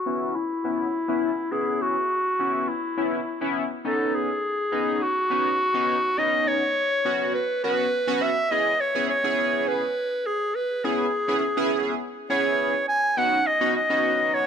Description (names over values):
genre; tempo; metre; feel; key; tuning
pop; 103 BPM; 4/4; straight; C# minor; A4 = 440 Hz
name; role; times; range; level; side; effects
clear clarinet; melody; 0.0-14.5 s; E4 to G#5; -23 LUFS; equal; low-pass filter, ping-pong delay
chorused polysynth; accompaniment; 0.1-14.5 s; B3 to G#4; -27 LUFS; equal; low-pass filter
room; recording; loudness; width
light reverb, small room ambience; none; -22 LUFS; side -7 dB against mid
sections
0.0-8.5 A section; 8.5-14.5 B section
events
build-up 0.0-8.5; filter sweep 0.0-8.5; drop 8.5-14.5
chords
0.0 C#m7; 3.9 Badd9; 8.5 C#m7; 13.2 Badd9